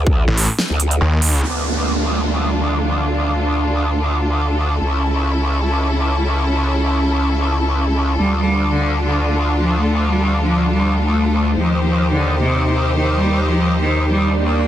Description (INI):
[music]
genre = heavy wobble dubstep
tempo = 142 BPM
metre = 4/4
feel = swing 54% on 16ths, half-time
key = D phrygian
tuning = A4 = 440 Hz
[part]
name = growl bass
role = bass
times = 0.0-14.7 s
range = C#2 to Eb2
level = -18 LUFS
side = equal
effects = chorus, overdrive
[part]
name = snarling distorted saw bass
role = bass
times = 0.3-1.4 s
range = A1 to Eb2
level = -15 LUFS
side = equal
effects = distortion, overdrive
[part]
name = big-room dance drum kit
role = drums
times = 0.4-1.3 s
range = hi-hat, snare drum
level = -20 LUFS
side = right 2 dB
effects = low-pass filter on hats, low-pass filter on snare
[part]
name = rich studio string section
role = sustained chords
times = 1.4-14.7 s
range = C#3 to C5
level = -22 LUFS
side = equal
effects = sidechain pumping
[part]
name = downlifter and swell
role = sound effects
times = 1.4-4.8, 14.2-14.7 s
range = none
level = -24 LUFS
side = right 3 dB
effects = none
[part]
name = clear cello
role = melody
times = 8.2-14.7 s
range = C3 to Bb3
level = -18 LUFS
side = equal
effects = digital delay
[sound]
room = light reverb, digital ambience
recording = dense, heavily limited modern master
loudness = -15 LUFS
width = side -11 dB against mid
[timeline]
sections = 0.0-1.4 A section; 1.4-14.7 B section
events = drop 0.0-1.4; swell 14.2-14.7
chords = 0.0 D5; 1.4 Dm; 4.8 A/C#; 8.2 Dm; 11.6 Cm/Eb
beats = 0.16 0.59 1.01 | 1.43 1.85 2.28 2.70 | 3.12 3.54 3.97 4.39 | 4.81 5.23 5.66 6.08 | 6.50 6.92 7.35 7.77 | 8.19 8.61 9.04 9.46 | 9.88 10.30 10.73 11.15 | 11.57 11.99 12.42 12.84 | 13.26 13.69 14.11 14.53